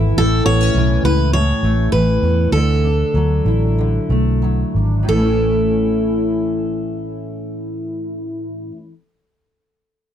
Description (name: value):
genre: acoustic pop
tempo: 88-104 BPM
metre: 4/4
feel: straight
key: A major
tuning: A4 = 441 Hz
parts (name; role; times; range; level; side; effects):
- fingerpicked steel-string acoustic guitar; accompaniment; 0.0-8.9 s; E2 to E4; -20 LUFS; left 1 dB; double-tracked left and right
- vintage muted fingered electric bass; bass; 0.0-8.7 s; G#1 to E2; -17 LUFS; equal; none
- picked steel-string acoustic guitar; melody; 0.2-8.7 s; A4 to C#5; -21 LUFS; right 1 dB; none
room: light reverb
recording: dry, close 1970s-style studio recording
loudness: -14 LUFS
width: side -9 dB against mid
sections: 0.2-5.1 A section; 5.1-7.8 B section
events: slowing down 0.2-5.1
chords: 0.2 A; 2.5 Dadd9; 5.1 A